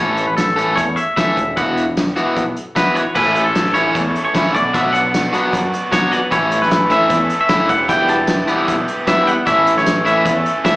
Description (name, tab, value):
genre	indie rock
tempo	152 BPM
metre	4/4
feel	straight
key	A major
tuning	A4 = 440 Hz
part	twangy electric guitar	melody	0.0-10.8 s	A4 to A5	-17 LUFS	equal	plate reverb, slapback echo, digital delay
part	crunchy overdriven guitar	riff	0.0-10.8 s	E3 to A4	-18 LUFS	left 1 dB	slapback echo
part	growling fingered electric bass	bass	0.0-10.4 s	E1 to F#2	-24 LUFS	equal	overdrive
part	loose indie drum kit	drums	0.2-10.7 s	crash cymbal, hi-hat, kick drum, snare drum, tambourine	-22 LUFS	equal	none
part	overdriven electric guitar	riff	3.1-10.8 s	E3 to A4	-21 LUFS	right 1 dB	lush chorus, slapback echo
room	moderate club reverb, RT60 0.6 s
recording	live gig heard through the venue's PA, club reverb, small speaker sound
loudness	-13 LUFS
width	side -20 dB against mid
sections	0.0-3.2 A section; 3.2-10.8 A section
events	none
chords	0.0 A; 1.4 Esus2; 3.2 A; 4.5 Bm; 6.3 A; 7.7 Em; 9.5 A